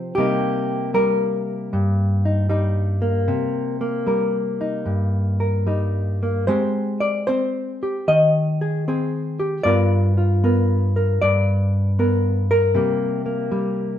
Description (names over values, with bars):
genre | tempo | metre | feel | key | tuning
solo jazz | 77 BPM | 4/4 | swing 66% on 8ths, rubato | C minor | A4 = 440 Hz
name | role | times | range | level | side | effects
hollow-body jazz guitar | solo | 0.0-14.0 s | G2 to Eb5 | -18 LUFS | equal | none
room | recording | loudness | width
wet stone room reverb, RT60 1.1 s | band playing live in one room | -18 LUFS | side -10 dB against mid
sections
0.0-14.0 A section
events
none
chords
0.2 Cm7; 6.5 Abmaj7; 9.7 G7#9; 12.8 C7(no3)